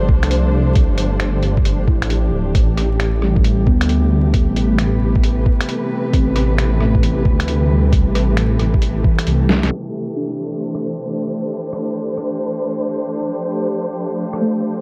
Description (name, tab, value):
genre	future garage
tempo	134 BPM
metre	4/4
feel	swing 64% on 16ths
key	A minor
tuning	A4 = 440 Hz
part	dark studio string section	sustained chords	0.0-14.8 s	C3 to C5	-24 LUFS	equal	vintage 12-bit sampler grit, sidechain pumping
part	dark detuned saw bass	bass	0.0-9.7 s	D1 to D2	-19 LUFS	equal	sidechain pumping
part	electronic kick drum	drums	0.1-9.2 s	none	-18 LUFS	equal	studio reverb
part	lo-fi sampler-style drum kit	drums	0.2-14.4 s	finger snaps, hi-hat, rim click, snare drum	-25 LUFS	equal	low-pass filter on snare, studio reverb, low-pass filter on hats
part	muted felt-like synth keys	accompaniment	1.9-14.8 s	E3 to E4	-26 LUFS	equal	chorus, sidechain pumping, analog delay
part	backwards swelling texture	texture	9.7-14.8 s	G4	-34 LUFS	equal	built-in reverb
room	light reverb, digital ambience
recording	vinyl crackle, low-pass filter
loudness	-17 LUFS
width	mono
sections	0.0-9.7 A section; 9.7-14.8 B section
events	kick drops out 9.3-9.7; drum fill 9.5; band accent 9.6; filter sweep 9.7-14.8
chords	0.0 G9sus4; 2.5 Am9; 9.7 D9sus4; 13.3 G9sus4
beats	0.31 | 0.76 1.21 1.66 2.10 | 2.55 3.00 3.45 3.89 | 4.34 4.79 5.24 5.68 | 6.13 6.58 7.03 7.48 | 7.92 8.37 8.82 9.27 | 9.71 10.16 10.61 11.06 | 11.51 11.95 12.40 12.85 | 13.30 13.74 14.19 14.64